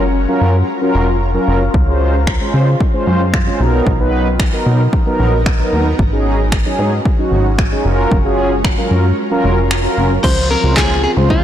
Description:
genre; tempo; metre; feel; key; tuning
dance-pop; 113 BPM; 4/4; straight; Db major; A4 = 439 Hz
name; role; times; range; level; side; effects
mellow synth brass; accompaniment; 0.0-11.4 s; Gb3 to C5; -17 LUFS; right 1 dB; chorus, sidechain pumping
shimmering ambient pad; sustained chords; 0.0-11.4 s; Db3 to Bb4; -23 LUFS; left 2 dB; chorus, built-in reverb, phaser, sidechain pumping
plucky analog bass; bass; 0.0-11.4 s; F1 to Db3; -15 LUFS; equal; sidechain pumping
deep house drum kit; drums; 1.7-11.4 s; crash cymbal, finger snaps, handclaps, kick drum, snare drum; -16 LUFS; equal; overdrive, soft clipping on snare
direct-recorded clean electric guitar; melody; 10.2-11.4 s; F4 to C5; -17 LUFS; equal; ping-pong delay
buzzing kalimba; arpeggios; 10.2-11.3 s; F3 to F4; -21 LUFS; left 4 dB; sidechain pumping
room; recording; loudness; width
light reverb; blown-out, overdriven recording, overdrive; -12 LUFS; side -10 dB against mid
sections
0.0-10.2 A section; 10.2-11.4 B section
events
kick muted 9.2-10.2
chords
0.0 Gbmaj7; 1.7 Dbmaj7; 3.6 Cbmaj7; 6.0 Ab7sus4; 7.8 Gbmaj7; 10.2 Dbmaj7

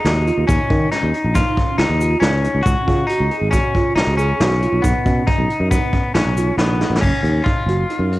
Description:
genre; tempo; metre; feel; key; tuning
progressive instrumental, band music in an uneven meter; 138 BPM; 5/4; straight; F# major; A4 = 440 Hz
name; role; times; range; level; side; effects
clean electric guitar; second line; 0.0-8.2 s; B3 to F#4; -21 LUFS; left 2 dB; tape echo
bell-like tine electric piano; arpeggios; 0.0-8.2 s; C#4 to G#4; -24 LUFS; right 3 dB; ensemble chorus, tape echo
sustaining fretless electric bass; bass; 0.0-8.2 s; F#1 to D#3; -19 LUFS; equal; none
vintage brush drum kit; drums; 0.1-8.2 s; crash cymbal, hi-hat, kick drum, snare drum; -20 LUFS; equal; cassette tape
tube shaker; percussion; 0.1-6.6 s; none; -38 LUFS; right 5 dB; none
room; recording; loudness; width
light reverb, small room ambience; home recording on cassette; -15 LUFS; side -17 dB against mid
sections
0.0-7.0 A section; 7.0-8.2 B section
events
drum fill 6.8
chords
0.5 D#5; 2.7 C#7sus4; 4.8 Bmaj7; 7.0 F#5

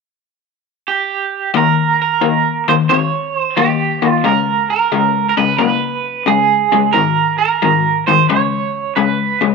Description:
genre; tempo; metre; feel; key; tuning
blues; 89 BPM; 4/4; swing 68% on 8ths; unclear; A4 = 441 Hz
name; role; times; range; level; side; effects
electric guitar through a small old amp; melody; 0.9-9.5 s; G4 to Db5; -15 LUFS; right 10 dB; tremolo
raw garage guitar; riff; 1.5-9.5 s; Ab2 to C4; -16 LUFS; left 11 dB; overdrive
room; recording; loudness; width
moderate echo chamber reverb, RT60 1.5 s; 1960s-style stereo with parts hard left and right; -12 LUFS; side -4 dB against mid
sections
0.0-1.5 A section; 1.5-9.5 B section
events
none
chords
0.0 N.C.; 1.5 Eb7; 4.2 Db5; 6.9 Ab5; 8.3 Db5

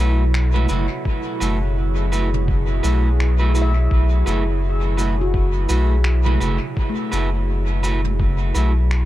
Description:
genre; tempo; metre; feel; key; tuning
ambient dub; 84 BPM; 4/4; swing 58% on 16ths; unclear; A4 = 436 Hz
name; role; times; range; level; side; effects
warbly tape-like pad; sustained chords; 0.0-9.1 s; B2 to A4; -27 LUFS; right 1 dB; chorus, built-in reverb
clean electric guitar; stabs; 0.0-8.7 s; A3 to B4; -26 LUFS; right 3 dB; dub echo
warm sub bass; bass; 0.0-9.1 s; F#1 to B1; -18 LUFS; equal; tube saturation
jazz brush drum kit; drums; 0.3-9.1 s; cabasa, finger snaps, toms; -30 LUFS; right 2 dB; dub echo
electronic kick drum; drums; 1.1-8.4 s; none; -21 LUFS; equal; none
handpan; arpeggios; 3.6-9.1 s; A3 to E5; -30 LUFS; left 5 dB; vintage 12-bit sampler grit, dub echo
room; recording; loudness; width
studio ambience; echo-heavy mix; -17 LUFS; side -14 dB against mid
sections
0.0-9.1 A section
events
none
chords
0.0 B7sus4

